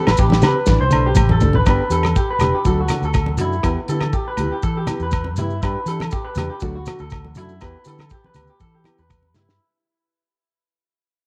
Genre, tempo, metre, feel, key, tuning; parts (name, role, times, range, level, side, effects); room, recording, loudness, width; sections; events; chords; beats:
highlife guitar band; 121 BPM; 4/4; swing 53% on 16ths; A4 = 441 Hz
nylon-string guitar; accompaniment; 0.0-9.5 s; E3 to G4; -27 LUFS; equal; cassette tape
electric guitar through a small old amp; arpeggios; 0.0-9.6 s; E4 to C5; -26 LUFS; equal; spring reverb, cassette tape, analog delay
fingered electric bass; bass; 0.1-9.6 s; E1 to E3; -24 LUFS; equal
damped 70s drum kit; drums; 0.1-9.6 s; hi-hat, kick drum, rim click, snare drum, toms; -22 LUFS; equal; cassette tape
agogo bells; percussion; 0.1-9.2 s; -32 LUFS; equal
maracas; percussion; 0.2-9.5 s; -40 LUFS; equal
congas; percussion; 0.3-9.5 s; -26 LUFS; equal
light reverb, small room ambience; home recording on cassette; -19 LUFS; mono
0.0-1.7 A section; 1.7-9.6 B section
drum fill 0.7-1.7, 9.3; fade-out 1.7-9.6
0.0 Am7; 0.7 Dsus2/A; 1.7 G; 2.6 D; 3.6 Em; 5.6 G; 6.6 D; 7.6 Em
0.18 0.67 1.17 | 1.66 2.15 2.64 3.14 | 3.63 4.13 4.62 5.12 | 5.62 6.11 6.61 7.11 | 7.61 8.10 8.60 9.10